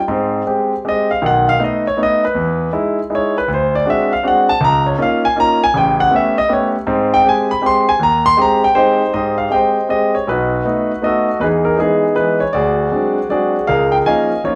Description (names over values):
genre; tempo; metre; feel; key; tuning
jazz; 159 BPM; 3/4; swing 64% on 8ths; unclear; A4 = 440 Hz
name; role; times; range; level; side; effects
clear concert grand piano; solo; 0.0-14.6 s; A1 to C6; -15 LUFS; equal; none
room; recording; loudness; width
wet studio reverb, RT60 0.7 s; band playing live in one room; -15 LUFS; mono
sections
0.1-9.1 A section; 9.1-14.6 B section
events
grand piano solo 0.1-9.1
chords
0.1 Abmaj7; 1.2 B7; 2.3 Emaj7; 3.5 D7#11; 4.6 Db69; 5.7 A9; 6.9 Abmaj7; 10.3 B7; 11.4 Emaj7; 12.5 D7#11; 13.7 Db69